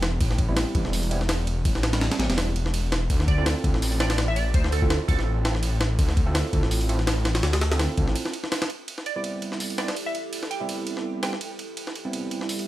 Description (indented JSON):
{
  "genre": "drum and bass, jungle",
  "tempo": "166 BPM",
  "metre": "4/4",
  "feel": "swing 55% on 16ths",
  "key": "A minor",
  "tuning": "A4 = 442 Hz",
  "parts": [
    { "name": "detuned saw bass", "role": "bass", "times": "0.0-8.2 s", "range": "E1 to D2", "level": "-24 LUFS", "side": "equal", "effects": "none" },
    { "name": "jungle sampler-style drum kit", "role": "drums", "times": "0.0-12.7 s", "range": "hi-hat, kick drum, ride cymbal, snare drum", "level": "-26 LUFS", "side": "equal", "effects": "overdrive, high-pass filter on snare, studio reverb, high-pass filter on cymbals, high-pass filter on kick, high-pass filter on hats" },
    { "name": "overdriven tine electric piano", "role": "stabs", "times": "0.5-12.7 s", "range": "G3 to A4", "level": "-32 LUFS", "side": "right 2 dB", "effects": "phaser, dub echo" },
    { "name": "glassy wavetable pluck", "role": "melody", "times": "3.3-5.6, 9.1-11.5 s", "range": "A4 to G5", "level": "-33 LUFS", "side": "right 3 dB", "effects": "chorus, dub echo" },
    { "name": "warbly tape-like pad", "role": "sustained chords", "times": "9.6-12.7 s", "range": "E4 to A4", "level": "-37 LUFS", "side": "right 2 dB", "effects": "chorus, built-in reverb, vintage 12-bit sampler grit" }
  ],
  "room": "little or no reverb",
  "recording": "none",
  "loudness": "-22 LUFS",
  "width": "side -15 dB against mid",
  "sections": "0.0-8.9 A section; 8.9-12.7 B section",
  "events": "break 8.2-8.9",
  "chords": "0.0 Am7; 3.1 Dm7; 8.9 Am7"
}